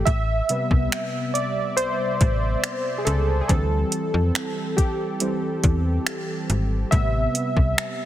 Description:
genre	contemporary R&B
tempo	70 BPM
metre	4/4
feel	straight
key	A minor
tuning	A4 = 437 Hz
part	warm analog keys	accompaniment	0.0-8.1 s	C3 to E5	-24 LUFS	equal	chorus
part	slap-like FM bass	bass	0.0-7.7 s	G#1 to F2	-22 LUFS	equal	none
part	smooth R&B drum kit	drums	0.1-8.0 s	finger snaps, hi-hat, kick drum	-23 LUFS	equal	overdrive, soft clipping on snare
room	light reverb, digital ambience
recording	dense, heavily limited modern master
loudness	-20 LUFS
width	side -12 dB against mid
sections	0.0-8.1 A section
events	synth keys solo 0.0-8.1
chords	0.1 Am7; 3.5 D7sus4 (rootless); 6.9 Am7

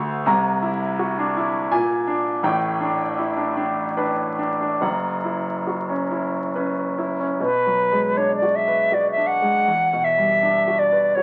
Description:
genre	classical, impressionist duo for flute and grand piano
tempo	68-86 BPM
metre	3/4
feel	rubato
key	B minor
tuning	A4 = 441 Hz
part	clear concert grand piano	accompaniment	0.0-11.2 s	F#1 to C6	-24 LUFS	equal	none
part	silver concert flute	melody	7.4-11.2 s	B4 to F#5	-20 LUFS	equal	none
room	moderate studio reverb, RT60 0.5 s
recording	very old 78 rpm record, vinyl crackle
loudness	-21 LUFS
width	mono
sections	0.0-7.4 A section; 7.4-11.2 B section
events	none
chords	0.3 C9; 1.7 A#7; 2.5 A9sus4; 4.8 F#7sus4; 7.4 Bm6; 9.7 Em9

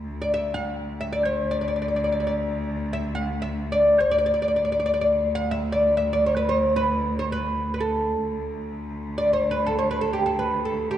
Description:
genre	Arabic maqam ensemble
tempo	free time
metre	none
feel	none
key	D maqam rast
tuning	A4 = 439 Hz
part	rich cello	drone	0.0-11.0 s	D2	-28 LUFS	equal	none
part	oud	melody	0.2-11.0 s	G4 to F#5-50c	-22 LUFS	equal	none
room	wet concert hall reverb, RT60 1.8 s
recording	dark, warm production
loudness	-21 LUFS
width	side -11 dB against mid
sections	0.0-11.0 A section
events	none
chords	none

